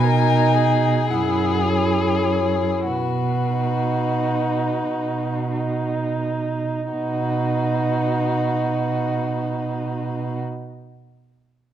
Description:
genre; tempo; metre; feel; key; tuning
classical, slow romantic movement for string quartet; 28-39 BPM (dotted quarters); 6/8; rubato; B major; A4 = 440 Hz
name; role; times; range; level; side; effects
muted violin; melody; 0.0-10.4 s; B4 to G#5; -28 LUFS; left 10 dB; none
muted violin; second line; 0.0-10.4 s; F#4 to A#4; -27 LUFS; left 3 dB; none
muted viola; accompaniment; 0.0-10.4 s; D#4 to E4; -24 LUFS; right 2 dB; none
muted cello; bass; 0.0-10.4 s; F#2 to B2; -23 LUFS; right 4 dB; none
room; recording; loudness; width
moderate large studio reverb, RT60 1.2 s; dark, warm production; -19 LUFS; side -10 dB against mid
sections
0.0-6.9 A section; 6.9-10.9 B section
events
slowing down 0.0-6.9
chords
0.0 B; 1.1 F#5; 2.9 B

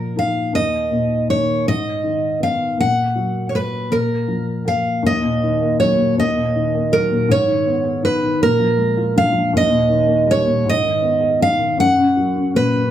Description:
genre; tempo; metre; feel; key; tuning
acoustic folk-pop ballad; 53 BPM (dotted quarters); 6/8; straight; Eb minor; A4 = 440 Hz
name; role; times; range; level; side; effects
picked steel-string acoustic guitar; melody; 0.0-12.9 s; Bb4 to Gb5; -18 LUFS; right 2 dB; plate reverb
felt-muted upright piano; accompaniment; 0.0-12.9 s; Eb2 to Ab4; -19 LUFS; left 2 dB; none
room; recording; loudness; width
wet small room ambience, RT60 0.5 s; heard from further back in the room; -15 LUFS; side -11 dB against mid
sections
0.0-5.0 A section; 5.0-12.9 B section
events
none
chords
0.0 Bbsus4; 0.5 Eb5; 1.7 Abm; 2.8 Gbadd11/Bb; 3.9 Bb5; 5.0 Ebm; 7.3 Abm; 8.4 Bb7; 9.5 Eb; 10.7 Abm; 11.8 Gb

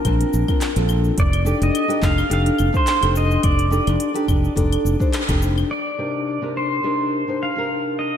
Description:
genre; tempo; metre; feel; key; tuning
sunset chillout; 106 BPM; 4/4; swing 54% on 16ths; unclear; A4 = 440 Hz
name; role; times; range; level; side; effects
pedal steel guitar; melody; 0.0-8.2 s; Bb4 to F5; -24 LUFS; right 1 dB; lush chorus, diffuse ambient delay
nylon-string guitar; accompaniment; 0.0-8.2 s; C3 to A5; -22 LUFS; left 2 dB; auto-pan, low-pass filter, ping-pong delay
modern bright fingered electric bass; bass; 0.0-5.6 s; F1 to Bb1; -19 LUFS; equal; none
deep house drum kit; drums; 0.0-5.7 s; cabasa, claves, handclaps, hi-hat; -30 LUFS; left 2 dB; none
electronic kick drum; drums; 0.0-5.4 s; none; -21 LUFS; equal; none
room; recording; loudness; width
wet lush hall reverb, RT60 1.7 s, digital ambience; dreamy mix soaked in reverb; -17 LUFS; side -9 dB against mid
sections
0.0-5.7 A section; 5.7-8.2 B section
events
band accent 5.1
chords
0.0 Bbmaj9; 1.2 F13; 5.7 Cm9

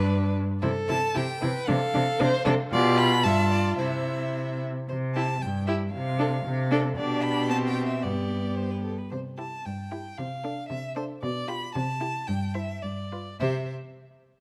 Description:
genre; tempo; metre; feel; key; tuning
quick classical-period movement for string quartet; 113 BPM; 2/4; rubato; C major; A4 = 440 Hz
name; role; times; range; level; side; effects
rich violin; melody; 0.0-13.7 s; A4 to B5; -34 LUFS; equal; none
rich violin; second line; 0.0-13.7 s; G4 to E5; -35 LUFS; equal; none
rich viola; accompaniment; 0.0-13.7 s; B3 to G4; -33 LUFS; equal; none
rich cello; bass; 0.0-13.7 s; G2 to C3; -30 LUFS; equal; none
room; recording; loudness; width
moderate scoring stage reverb, RT60 1.8 s; close, detailed microphones; -27 LUFS; mono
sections
0.0-4.9 A section; 4.9-13.4 A section; 13.4-14.4 B section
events
none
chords
0.0 G; 0.6 C; 1.7 Dm7/C; 2.7 G7/B; 3.2 Gsus2; 3.8 C; 5.9 Dm7/C; 7.0 G/B; 8.0 G; 9.1 C; 10.2 Dm7/C; 11.2 G7/B; 11.7 C; 12.3 C/G; 12.8 G7; 13.4 C5

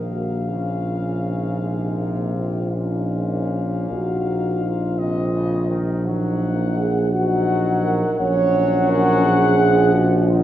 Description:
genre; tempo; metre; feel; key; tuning
classical, hymn-like piece for brass band; 49-58 BPM (dotted quarters); 12/8; rubato; unclear; A4 = 440 Hz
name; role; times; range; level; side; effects
warm cornet; melody; 0.0-10.4 s; Eb5 to Gb5; -27 LUFS; left 3 dB; none
dark French horn section; second line; 0.0-10.4 s; Db4 to Db5; -23 LUFS; right 3 dB; none
brilliant trombone; accompaniment; 0.0-10.4 s; Bb2 to Gb3; -30 LUFS; right 1 dB; none
warm euphonium; accompaniment; 0.0-10.4 s; Ab3 to Eb4; -28 LUFS; left 2 dB; none
warm tuba; bass; 0.0-10.4 s; Bb1; -21 LUFS; equal; none
room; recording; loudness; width
wet recital hall reverb, RT60 1.8 s; recorded in a church or concert hall; -18 LUFS; side -12 dB against mid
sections
0.0-10.4 A section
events
none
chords
0.0 Bbm; 3.9 Cm7b5/Bb; 8.2 Gb/Bb

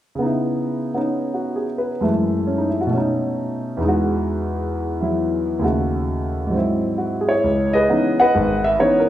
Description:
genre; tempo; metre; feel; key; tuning
solo jazz; 133 BPM; 4/4; swing 66% on 8ths; C# minor; A4 = 440 Hz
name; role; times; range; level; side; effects
warm concert grand piano; solo; 0.2-9.1 s; G#1 to F#5; -18 LUFS; equal; none
room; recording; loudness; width
wet recital hall reverb, RT60 1.3 s; recorded in a church or concert hall; -18 LUFS; side -12 dB against mid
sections
0.2-7.4 A section; 7.4-9.1 B section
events
none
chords
0.2 C#m9; 2.0 F#m9; 2.9 B9; 3.8 Emaj9; 5.6 D#m7b5; 6.5 G#7b13; 7.4 C#m9

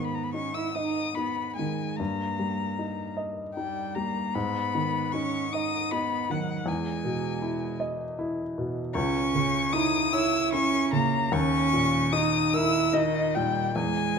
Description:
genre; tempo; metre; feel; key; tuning
classical, slow romantic movement for piano trio; 76 BPM; 3/4; uneven beats, rubato; unclear; A4 = 439 Hz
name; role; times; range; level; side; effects
dark violin; melody; 0.0-14.2 s; D#5 to E6; -29 LUFS; left 6 dB; none
rich cello; second line; 0.0-14.2 s; D#3 to E4; -30 LUFS; right 6 dB; none
warm baby grand piano; accompaniment; 0.0-14.2 s; C#2 to D#5; -29 LUFS; left 1 dB; none
room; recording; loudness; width
moderate recital hall reverb, RT60 1.7 s; close, detailed microphones; -25 LUFS; side -6 dB against mid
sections
0.0-14.2 A section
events
none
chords
0.0 G#m; 2.0 D#/G; 4.3 G#m; 6.7 Emaj7; 9.0 C#m69; 11.3 D#5

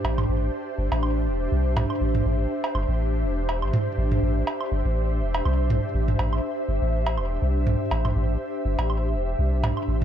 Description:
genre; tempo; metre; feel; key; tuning
minimal techno; 122 BPM; 4/4; swing 55% on 16ths; A minor; A4 = 440 Hz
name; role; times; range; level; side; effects
punchy sub bass; bass; 0.0-10.0 s; E1 to C2; -24 LUFS; equal; tube saturation
electronic cowbell, toms and woodblock; percussion; 0.0-10.0 s; none; -27 LUFS; right 2 dB; none
ethereal airy pad; texture; 0.0-10.0 s; D4 to E5; -28 LUFS; equal; ensemble chorus, built-in reverb
room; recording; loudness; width
light reverb; none; -22 LUFS; side -10 dB against mid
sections
0.0-10.0 A section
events
none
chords
0.0 Am

